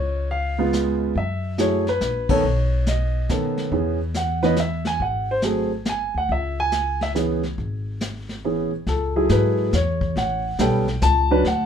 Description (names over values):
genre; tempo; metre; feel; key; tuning
jazz piano trio; 140 BPM; 3/4; swing 66% on 8ths; C# minor; A4 = 440 Hz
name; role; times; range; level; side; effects
warm concert grand piano; melody; 0.0-11.7 s; C#3 to A5; -21 LUFS; right 1 dB; none
upright bass; bass; 0.0-11.7 s; G#1 to B2; -24 LUFS; left 1 dB; none
vintage brush drum kit; drums; 0.7-11.7 s; brushed snare drum, hi-hat, kick drum, ride cymbal, snare drum; -29 LUFS; left 1 dB; none
room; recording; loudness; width
moderate club reverb, RT60 0.6 s; minimal, uncompressed stereo recording; -20 LUFS; side -8 dB against mid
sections
0.0-8.9 A section; 8.9-11.7 B section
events
band accent 2.2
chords
0.0 C#7; 1.2 F#m7; 2.4 B9; 3.7 E6; 5.0 G#7; 6.3 C#m; 8.9 F#m9; 10.2 A9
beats
0.30 0.73 | 1.16 1.58 2.01 | 2.44 2.87 3.29 | 3.72 4.15 4.58 | 5.01 5.44 5.87 | 6.29 6.72 7.15 | 7.58 8.01 8.44 | 8.87 9.30 9.72 | 10.15 10.58 11.01 | 11.44